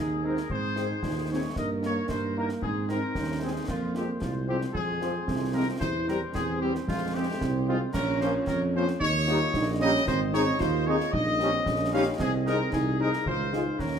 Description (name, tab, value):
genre	military-style march for wind band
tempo	113 BPM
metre	2/4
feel	straight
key	Ab major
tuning	A4 = 439 Hz
part	warm trumpet section	melody	0.0-14.0 s	F4 to F5	-31 LUFS	left 2 dB	none
part	dark euphonium	second line	0.0-14.0 s	Ab3 to F4	-32 LUFS	right 4 dB	none
part	warm woodwind section	second line	0.0-14.0 s	Eb4 to F5	-38 LUFS	left 2 dB	none
part	dark tuba	bass	0.0-14.0 s	Ab1 to Ab2	-31 LUFS	right 2 dB	none
part	dark French horn section	accompaniment	0.2-13.6 s	G3 to Ab4	-33 LUFS	left 4 dB	none
part	mellow trombone section	sustained chords	0.3-13.6 s	Eb3 to F4	-36 LUFS	right 1 dB	none
part	concert snare drum, concert bass drum and clash cymbals	drums	0.4-14.0 s	none	-36 LUFS	equal	none
room	wet large studio reverb, RT60 1.4 s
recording	minimal, uncompressed stereo recording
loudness	-25 LUFS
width	side -7 dB against mid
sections	0.0-14.0 A section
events	none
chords	0.0 Ab; 1.6 Eb/G; 2.6 Ab; 3.7 Fm; 5.8 C/E; 6.9 Fm; 7.9 Bbm; 9.0 Eb7; 10.1 Ab; 11.1 Eb7/Bb; 12.2 Ab/C; 13.3 Db